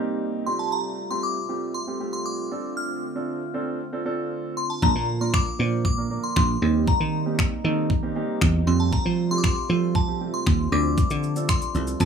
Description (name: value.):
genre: dance-pop.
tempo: 117 BPM.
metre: 4/4.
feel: straight.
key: unclear.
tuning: A4 = 440 Hz.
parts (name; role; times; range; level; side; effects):
glassy synth bell; melody; 0.0-12.1 s; A5 to F6; -29 LUFS; left 2 dB; chorus, phaser, digital delay.
dark baby grand piano; accompaniment; 0.0-12.1 s; A3 to C5; -30 LUFS; right 3 dB; sidechain pumping.
warm analog pad; sustained chords; 0.0-12.1 s; C3 to F4; -34 LUFS; equal; chorus, sidechain pumping.
dry thumbed slap bass; bass; 4.8-12.1 s; Bb1 to F3; -23 LUFS; right 2 dB; sidechain pumping.
pop drum kit; drums; 4.8-12.1 s; finger snaps, hi-hat, kick drum, shaker; -23 LUFS; equal; none.
room: little or no reverb.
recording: rough home demo mix.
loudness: -22 LUFS.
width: side -7 dB against mid.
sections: 0.0-12.1 A section.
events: none.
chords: 0.5 Fadd9; 2.5 Dm7; 4.8 Bb; 6.6 Eb6; 8.7 Fadd9; 10.7 Dm7.